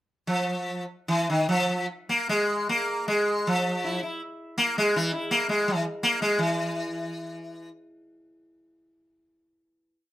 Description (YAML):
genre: indian classical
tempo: 147-195 BPM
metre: 4/4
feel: straight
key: E raga marwa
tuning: A4 = 441 Hz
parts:
  - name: sitar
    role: solo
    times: 0.3-7.7 s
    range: D#3 to E4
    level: -24 LUFS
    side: equal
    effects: none
room: moderate small room reverb, RT60 0.6 s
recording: none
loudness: -24 LUFS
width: side -14 dB against mid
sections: 0.3-6.4 theme; 6.4-9.0 final note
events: speeding up 0.3-9.0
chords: none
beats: | 0.27 0.68 1.09 1.49 | 1.89 2.29 2.68 3.07 | 3.46 3.84 4.22 4.59 | 4.96 5.32 5.68 6.04 | 6.39 6.73 7.07 7.40